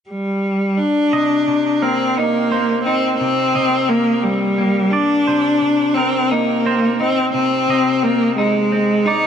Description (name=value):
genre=rock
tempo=58 BPM (dotted quarters)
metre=6/8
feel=straight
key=C minor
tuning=A4 = 440 Hz
part: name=bright cello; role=melody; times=0.1-9.3 s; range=G3 to Eb4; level=-16 LUFS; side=equal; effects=tape echo
part: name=semi-hollow electric guitar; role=arpeggios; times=1.1-9.3 s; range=C3 to Eb4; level=-22 LUFS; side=left 2 dB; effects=tape echo
part: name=twangy electric guitar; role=arpeggios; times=1.1-9.3 s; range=Bb4 to Eb5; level=-26 LUFS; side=right 7 dB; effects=tape echo
room=light reverb, small room ambience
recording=nothing above 10.3 kHz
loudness=-14 LUFS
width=side -8 dB against mid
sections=0.0-1.1 A section; 1.1-9.3 B section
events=none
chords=0.0 N.C.; 1.1 Cm7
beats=0.09 | 1.13 2.17 | 3.21 4.25 | 5.28 6.32 | 7.35 8.38